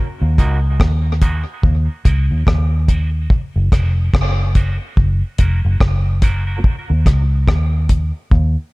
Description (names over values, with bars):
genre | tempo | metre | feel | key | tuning
dub reggae | 72 BPM | 4/4 | swing 59% on 16ths | Eb minor | A4 = 438 Hz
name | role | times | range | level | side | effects
vintage muted fingered electric bass | bass | 0.2-8.5 s | F1 to Eb2 | -15 LUFS | equal | none
mellow electric guitar | accompaniment | 0.4-6.6 s | Bb3 to Bb4 | -31 LUFS | right 3 dB | high-pass filter, tape echo
deep reggae drum kit | drums | 0.4-8.5 s | hi-hat, kick drum, rim click | -14 LUFS | equal | none
room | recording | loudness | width
small room ambience | echo-heavy mix | -14 LUFS | side -24 dB against mid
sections
0.0-8.7 A section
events
filter sweep on clean electric guitar 0.0-6.6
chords
0.0 Ebm; 3.3 Gb; 6.6 Dbsus2